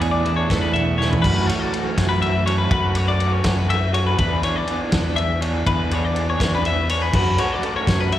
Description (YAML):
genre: math rock and midwest emo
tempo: 81 BPM (dotted quarters)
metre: 6/8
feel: straight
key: unclear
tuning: A4 = 441 Hz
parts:
  - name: twelve-string electric guitar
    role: accompaniment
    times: 0.0-2.7 s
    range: E2 to G#4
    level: -25 LUFS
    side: right 5 dB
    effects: none
  - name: twelve-string electric guitar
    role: arpeggios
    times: 0.0-8.2 s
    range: B4 to E5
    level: -24 LUFS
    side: left 4 dB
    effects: slapback echo
  - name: raw garage guitar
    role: riff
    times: 0.0-8.2 s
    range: E3 to G#4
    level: -25 LUFS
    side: right 2 dB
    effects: overdrive, tremolo, slapback echo
  - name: modern bright fingered electric bass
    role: bass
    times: 0.0-8.2 s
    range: E2 to F#2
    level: -22 LUFS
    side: equal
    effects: none
  - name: loose indie drum kit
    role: drums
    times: 0.0-8.2 s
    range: crash cymbal, kick drum, ride cymbal, snare drum, toms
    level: -24 LUFS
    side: equal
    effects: none
room: little or no reverb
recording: live gig heard through the venue's PA, recital hall reverb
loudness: -17 LUFS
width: side -12 dB against mid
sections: 0.0-1.2 A section; 1.2-8.2 B section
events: drum fill 1.0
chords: 0.0 E7sus4; 1.2 F#m7; 4.2 E5; 7.1 F#m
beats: 0.49 | 1.23 1.97 | 2.70 3.44 | 4.18 4.92 | 5.66 6.39 | 7.13 7.87